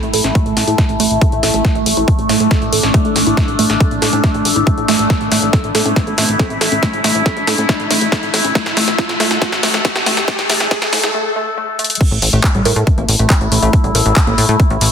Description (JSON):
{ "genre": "psychedelic trance", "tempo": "139 BPM", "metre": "4/4", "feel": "straight", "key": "unclear", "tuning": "A4 = 437 Hz", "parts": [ { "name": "overtone-sweeping drone", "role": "sustained chords", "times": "0.0-14.9 s", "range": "A3 to A4", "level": "-19 LUFS", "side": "left 1 dB", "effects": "chorus, built-in reverb, sidechain pumping" }, { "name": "plucky analog bass", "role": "bass", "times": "0.0-14.9 s", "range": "A1 to A2", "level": "-19 LUFS", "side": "equal", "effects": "none" }, { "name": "techno drum kit", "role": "drums", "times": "0.0-14.9 s", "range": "crash cymbal, handclaps, hi-hat, snare drum", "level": "-17 LUFS", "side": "left 1 dB", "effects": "overdrive, high-pass filter on hats, high-pass filter on snare, high-pass filter on cymbals" }, { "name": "riser", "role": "sound effects", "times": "3.5-11.1 s", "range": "none", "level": "-24 LUFS", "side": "equal", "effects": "none" }, { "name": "woody wave-folded pluck", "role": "riff", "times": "0.1-14.9 s", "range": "G3 to Bb4", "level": "-21 LUFS", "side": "moving between left 3 dB and right 6 dB", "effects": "chorus, auto-pan, cassette tape, sidechain pumping, tape echo" }, { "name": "electronic kick drum", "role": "drums", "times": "0.4-14.7 s", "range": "none", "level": "-14 LUFS", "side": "equal", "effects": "overdrive" } ], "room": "moderate plate reverb, RT60 1.6 s", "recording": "dense, heavily limited modern master, high-pass filter", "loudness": "-12 LUFS", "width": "side -7 dB against mid", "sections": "0.0-12.0 A section; 12.0-14.9 B section", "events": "build-up 0.0-12.0; drum fill 0.0-11.1, 11.8; filter sweep on synth arpeggio sound 0.0-12.0; filter sweep 0.0-12.0; riser 3.5-11.1; break 11.1-12.0; drop 12.0-14.9", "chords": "0.0 A5", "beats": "0.35 0.78 1.22 | 1.65 2.08 2.51 2.94 | 3.37 3.81 4.24 4.67 | 5.10 5.53 5.96 6.39 | 6.83 7.26 7.69 8.12 | 8.55 8.98 9.42 9.85 | 10.28 10.71 11.14 11.57 | 12.01 12.44 12.87 13.30 | 13.73 14.16 14.60" }